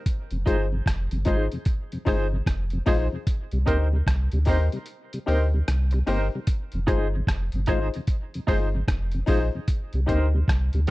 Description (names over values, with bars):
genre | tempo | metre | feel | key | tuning
roots reggae | 75 BPM | 4/4 | swing 63% on 16ths | F dorian | A4 = 440 Hz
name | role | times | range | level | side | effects
lo-fi sampler-style drum kit | drums | 0.1-10.9 s | hi-hat, kick drum, rim click | -25 LUFS | equal | none
mellow tonewheel organ | accompaniment | 0.3-10.8 s | F2 to F4 | -32 LUFS | left 1 dB | overdrive, chorus vibrato, slow rotary speaker
warm sub bass | bass | 0.3-10.9 s | F1 to Eb2 | -24 LUFS | equal | none
semi-hollow electric guitar | accompaniment | 0.5-10.9 s | Eb4 to C5 | -33 LUFS | right 4 dB | tremolo, tape echo
warm upright piano | stabs | 0.5-10.9 s | Eb4 to C5 | -29 LUFS | left 5 dB | none
room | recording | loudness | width
little or no reverb | dry, close 1970s-style studio recording | -22 LUFS | side -19 dB against mid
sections
0.0-10.9 A section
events
kick muted 4.9-6.5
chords
0.1 Fm7; 3.3 Cm7; 6.5 Fm7; 9.7 Cm7